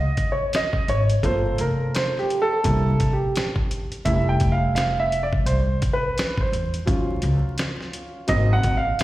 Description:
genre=hip hop, jazz-hop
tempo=85 BPM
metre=4/4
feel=swing 59% on 16ths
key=unclear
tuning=A4 = 440 Hz
part: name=warm upright piano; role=accompaniment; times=0.0-9.0 s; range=F#3 to G5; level=-24 LUFS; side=right 1 dB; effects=plate reverb, slapback echo
part: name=upright bass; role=bass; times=0.0-8.9 s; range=F1 to E2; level=-22 LUFS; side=equal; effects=none
part: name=dusty soul sampler-style drum kit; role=drums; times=0.2-9.0 s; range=hi-hat, kick drum, snare drum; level=-25 LUFS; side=equal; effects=none
room=light reverb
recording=live gig heard through the venue's PA, recital hall reverb, vinyl crackle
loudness=-20 LUFS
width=side -16 dB against mid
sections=0.0-9.0 A section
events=upright piano solo 0.0-9.0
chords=0.0 N.C.; 1.2 Gm7; 2.6 C7; 4.1 Fmaj7; 6.9 D#m7; 8.3 G#7

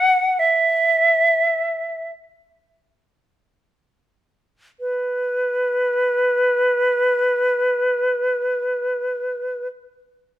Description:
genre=classical, free, expressive piece for unaccompanied flute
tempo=free time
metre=none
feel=none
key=unclear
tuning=A4 = 439 Hz
part: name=hollow concert flute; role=solo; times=0.0-9.7 s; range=B4 to F#5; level=-17 LUFS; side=equal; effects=none
room=light reverb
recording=minimal, uncompressed stereo recording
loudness=-17 LUFS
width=side -14 dB against mid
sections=0.0-4.8 A section; 4.8-8.9 B section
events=slowing down 0.0-4.8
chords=none

